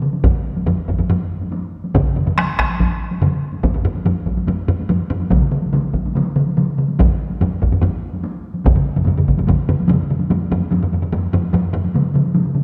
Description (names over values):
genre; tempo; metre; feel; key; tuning
japanese traditional, taiko drum ensemble; 144 BPM; 4/4; straight; none; none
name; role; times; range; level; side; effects
solo taiko drums; percussion; 0.0-12.6 s; none; -22 LUFS; equal; none
taiko ensemble; percussion; 0.1-12.6 s; none; -23 LUFS; equal; none
taiko ensemble; percussion; 0.2-11.8 s; none; -23 LUFS; equal; none
taiko ensemble; percussion; 0.2-9.6 s; none; -22 LUFS; equal; none
room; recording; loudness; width
wet concert hall reverb, RT60 2.2 s; none; -18 LUFS; mono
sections
0.0-10.3 A section; 10.3-12.6 B section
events
speeding up 0.0-12.6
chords
none